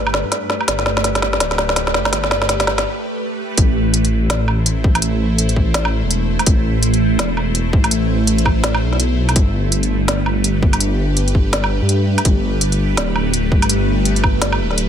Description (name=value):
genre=half-time drum and bass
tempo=166 BPM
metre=4/4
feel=swing 60% on 16ths, half-time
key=A minor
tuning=A4 = 440 Hz
part: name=bowed-like drone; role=sustained chords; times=0.0-14.9 s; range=A3 to C5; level=-22 LUFS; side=right 1 dB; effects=built-in reverb, phaser, sidechain pumping
part: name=dark detuned saw bass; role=bass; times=0.0-14.9 s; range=D1 to G2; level=-18 LUFS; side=equal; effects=tube saturation
part: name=organic electronic drum kit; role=drums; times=0.1-14.9 s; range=hi-hat, snare drum, woodblock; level=-18 LUFS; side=equal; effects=high-pass filter on snare, high-pass filter on hats, high-pass filter on perc, high-pass filter on room
part: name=electronic kick drum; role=drums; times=3.6-14.3 s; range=none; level=-15 LUFS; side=equal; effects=none
room=light reverb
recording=none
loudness=-14 LUFS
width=side -9 dB against mid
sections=0.0-3.6 A section; 3.6-14.9 B section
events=build-up 0.0-3.6; drum fill 0.0-2.9; filter sweep on synth drone 0.0-3.6; break 2.9-3.6; drop 3.6-14.9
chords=0.0 Gadd9; 3.6 Am; 9.4 Gadd9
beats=0.32 | 0.68 1.04 1.41 1.77 | 2.13 2.49 2.85 3.21 | 3.58 3.94 4.30 4.66 | 5.02 5.38 5.74 6.11 | 6.47 6.83 7.19 7.55 | 7.91 8.27 8.63 9.00 | 9.36 9.72 10.08 10.44 | 10.80 11.16 11.53 11.89 | 12.25 12.61 12.97 13.33 | 13.70 14.06 14.42 14.78